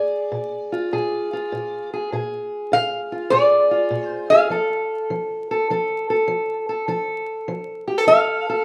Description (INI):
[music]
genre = acoustic country blues, solo or duo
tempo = 100 BPM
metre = 4/4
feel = swing 67% on 8ths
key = Bb mixolydian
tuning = A4 = 441 Hz
[part]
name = lap resonator guitar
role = melody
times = 0.0-8.6 s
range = D5 to F5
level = -19 LUFS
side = equal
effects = none
[part]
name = fingerpicked steel-string acoustic guitar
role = accompaniment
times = 0.0-8.6 s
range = Bb2 to A4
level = -25 LUFS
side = equal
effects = none
[sound]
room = moderate studio reverb, RT60 0.8 s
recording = vinyl crackle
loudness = -21 LUFS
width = mono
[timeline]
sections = 0.0-8.6 A section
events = none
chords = 0.0 Bb7; 4.5 F